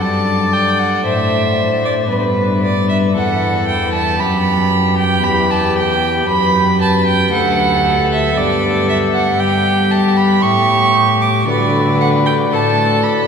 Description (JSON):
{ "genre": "classical, baroque-style sonata movement with continuo", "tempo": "58 BPM", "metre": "3/4", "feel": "straight", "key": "D major from 8.4 s", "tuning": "A4 = 438 Hz", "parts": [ { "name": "dark violin", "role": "melody", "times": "0.0-13.3 s", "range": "G4 to D5", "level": "-19 LUFS", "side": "left 5 dB", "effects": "none" }, { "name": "warm violin", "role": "second line", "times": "0.0-13.3 s", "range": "B4 to D6", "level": "-17 LUFS", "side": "right 4 dB", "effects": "none" }, { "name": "pipe organ, sparkling flutes", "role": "accompaniment", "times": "0.0-13.3 s", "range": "D2 to E5", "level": "-20 LUFS", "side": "left 1 dB", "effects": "none" }, { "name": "warm cello", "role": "bass", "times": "0.0-13.3 s", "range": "D2 to G3", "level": "-18 LUFS", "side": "right 1 dB", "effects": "none" } ], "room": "wet cathedral reverb, RT60 5.1 s", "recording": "minimal, uncompressed stereo recording", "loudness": "-12 LUFS", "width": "side -6 dB against mid", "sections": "0.0-13.3 A section", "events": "none", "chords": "0.0 D7(no3); 2.1 G; 5.2 Em; 8.4 G; 10.4 A7; 11.5 D" }